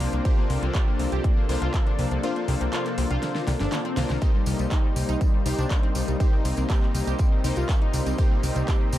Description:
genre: progressive house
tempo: 121 BPM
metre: 4/4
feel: straight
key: C dorian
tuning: A4 = 440 Hz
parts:
  - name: lush unison pad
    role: sustained chords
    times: 0.0-9.0 s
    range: C3 to A4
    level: -32 LUFS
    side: right 1 dB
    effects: chorus, sidechain pumping
  - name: analog pluck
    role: arpeggios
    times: 0.0-9.0 s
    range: G3 to G4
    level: -32 LUFS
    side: left 4 dB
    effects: chorus, sidechain pumping, dub echo
  - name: supersaw stab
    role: stabs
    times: 0.0-9.0 s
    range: Bb3 to C5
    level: -32 LUFS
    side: left 2 dB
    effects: cassette tape, sidechain pumping, dub echo
  - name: plucky analog bass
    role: bass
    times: 0.0-9.0 s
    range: G1 to C2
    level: -26 LUFS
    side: equal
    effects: sidechain pumping
  - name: deep house drum kit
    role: drums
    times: 0.0-9.0 s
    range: handclaps, hi-hat, snare drum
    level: -34 LUFS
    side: equal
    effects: overdrive
  - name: electronic kick drum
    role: drums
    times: 0.3-8.8 s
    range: none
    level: -22 LUFS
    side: equal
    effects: none
  - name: swell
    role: sound effects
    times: 3.4-4.2 s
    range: none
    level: -37 LUFS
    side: left 4 dB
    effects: none
  - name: tambourine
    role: percussion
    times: 4.2-9.0 s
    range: none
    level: -40 LUFS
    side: right 3 dB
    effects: none
room: little or no reverb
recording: dark, warm production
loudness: -21 LUFS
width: side -14 dB against mid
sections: 0.0-9.0 A section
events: break 2.2-4.2; drum fill 3.2-4.2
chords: 0.0 Bbadd9/C; 4.2 Cm7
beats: | 0.25 0.75 1.24 1.74 | 2.23 2.73 3.23 3.72 | 4.22 4.71 5.21 5.71 | 6.20 6.70 7.19 7.69 | 8.19 8.68

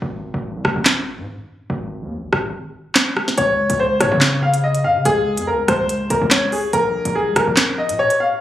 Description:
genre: hip hop, drill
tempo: 143 BPM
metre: 4/4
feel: half-time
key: unclear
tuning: A4 = 440 Hz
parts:
  - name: hard-hitting 808-style bass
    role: bass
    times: 0.0-8.0 s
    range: Ab1 to Db3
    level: -23 LUFS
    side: equal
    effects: none
  - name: drill drum kit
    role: drums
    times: 0.6-8.2 s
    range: handclaps, hi-hat, rim click, snare drum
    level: -17 LUFS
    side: equal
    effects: none
  - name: clear upright piano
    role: melody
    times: 3.4-8.4 s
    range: Ab4 to F5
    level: -17 LUFS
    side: left 1 dB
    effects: analog delay
room: light reverb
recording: recorded on a phone in the room, club reverb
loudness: -16 LUFS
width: side -12 dB against mid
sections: 0.0-8.4 A section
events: break 0.0-3.4; kick muted 2.5-3.4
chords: 0.0 N.C.; 3.4 Db5; 6.7 N.C.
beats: | 0.02 0.44 0.86 1.28 | 1.70 2.12 2.54 2.96 | 3.38 3.80 4.21 4.63 | 5.05 5.47 5.89 6.31 | 6.73 7.15 7.57 7.99

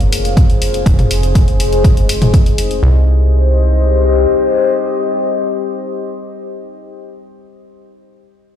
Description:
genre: melodic techno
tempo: 122 BPM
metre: 4/4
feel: straight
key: C minor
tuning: A4 = 443 Hz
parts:
  - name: deep dark ambient pad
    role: sustained chords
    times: 0.0-6.8 s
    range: G4 to F5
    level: -17 LUFS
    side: left 4 dB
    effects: chorus, built-in reverb, vintage 12-bit sampler grit, sidechain pumping
  - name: tight sequencer bass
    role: bass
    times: 0.0-4.3 s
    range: F1 to C2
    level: -14 LUFS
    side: equal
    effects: tube saturation, sidechain pumping
  - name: punchy analog drum machine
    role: drums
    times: 0.0-2.8 s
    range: hi-hat, toms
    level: -20 LUFS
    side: left 1 dB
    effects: none
  - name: electronic kick drum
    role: drums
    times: 0.4-2.4 s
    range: none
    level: -11 LUFS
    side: equal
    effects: none
room: light reverb, digital ambience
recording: played on a big sound system in a bare room, stone room reverb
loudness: -11 LUFS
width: side -10 dB against mid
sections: 0.0-2.8 A section; 2.8-6.8 B section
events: none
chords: 0.0 Fm; 2.8 Cm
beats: 0.37 | 0.86 1.35 1.84 2.34 | 2.83 3.32 3.81 4.30 | 4.80 5.29 5.78 6.27

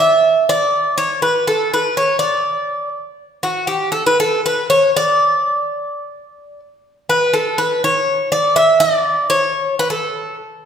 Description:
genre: greek folk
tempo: 123 BPM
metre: 4/4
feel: straight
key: D major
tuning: A4 = 435 Hz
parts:
  - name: Greek bouzouki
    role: solo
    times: 0.0-10.3 s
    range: F#4 to E5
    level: -14 LUFS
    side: equal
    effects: none
room: wet recital hall reverb, RT60 1.6 s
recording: recorded in a church or concert hall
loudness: -14 LUFS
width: side -8 dB against mid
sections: 0.0-7.1 A section; 7.1-10.7 B section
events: none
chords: none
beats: 0.21 0.70 | 1.20 1.69 2.18 2.67 | 3.17 3.66 4.15 4.64 | 5.13 5.62 6.11 6.59 | 7.08 7.57 8.06 8.55 | 9.03 9.52 10.01

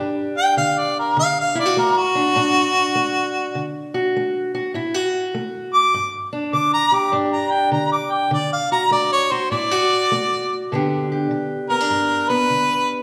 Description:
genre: acoustic country blues, solo or duo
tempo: 101 BPM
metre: 4/4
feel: swing 65% on 8ths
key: G major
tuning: A4 = 441 Hz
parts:
  - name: fingerpicked steel-string acoustic guitar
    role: accompaniment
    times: 0.0-13.0 s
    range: G2 to G4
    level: -25 LUFS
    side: equal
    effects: none
  - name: mellow harmonica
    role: melody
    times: 0.4-12.9 s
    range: F#4 to D6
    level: -20 LUFS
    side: equal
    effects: none
room: wet recital hall reverb, RT60 1.7 s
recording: recorded in a church or concert hall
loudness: -20 LUFS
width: mono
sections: 0.0-10.7 A section; 10.7-13.0 B section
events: harmonica solo 0.0-10.7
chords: 0.0 G5; 1.2 D; 5.9 G5; 8.3 D; 10.7 G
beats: 0.57 | 1.17 1.76 2.36 2.95 | 3.55 4.14 4.74 5.34 | 5.93 6.53 7.13 7.72 | 8.32 8.92 9.52 10.11 | 10.71 11.31 11.91 12.51

